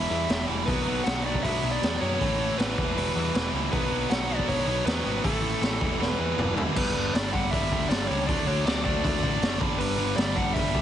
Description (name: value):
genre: punk rock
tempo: 158 BPM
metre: 4/4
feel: straight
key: unclear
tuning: A4 = 440 Hz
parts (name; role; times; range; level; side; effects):
- biting lead guitar; melody; 0.0-10.8 s; A4 to F#5; -31 LUFS; equal; overdrive
- sludgy distorted guitar; riff; 0.0-10.8 s; G2 to E4; -31 LUFS; left 14 dB; overdrive
- tight distorted guitar; riff; 0.0-10.8 s; E2 to D4; -30 LUFS; right 13 dB; distortion
- growling picked electric bass; bass; 0.0-10.8 s; E1 to F#2; -32 LUFS; equal; overdrive
- raw garage drum kit; drums; 0.3-10.8 s; crash cymbal, hi-hat, kick drum, snare drum, toms; -28 LUFS; equal; none
room: little or no reverb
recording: heavily compressed radio sound, multiband compression, nothing above 10.6 kHz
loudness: -23 LUFS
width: side -10 dB against mid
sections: 0.0-6.8 A section; 6.8-10.8 B section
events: drum fill 6.0-6.8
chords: 0.0 Em; 0.7 Bm; 2.2 A; 2.8 Em; 3.7 Bm; 5.2 A; 5.8 Em; 6.8 G; 8.3 D; 9.6 G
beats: 0.30 | 0.68 1.06 1.44 1.82 | 2.20 2.58 2.96 3.34 | 3.72 4.10 4.48 4.86 | 5.24 5.62 6.00 6.38 | 6.76 7.14 7.52 7.90 | 8.28 8.66 9.04 9.42 | 9.80 10.18 10.56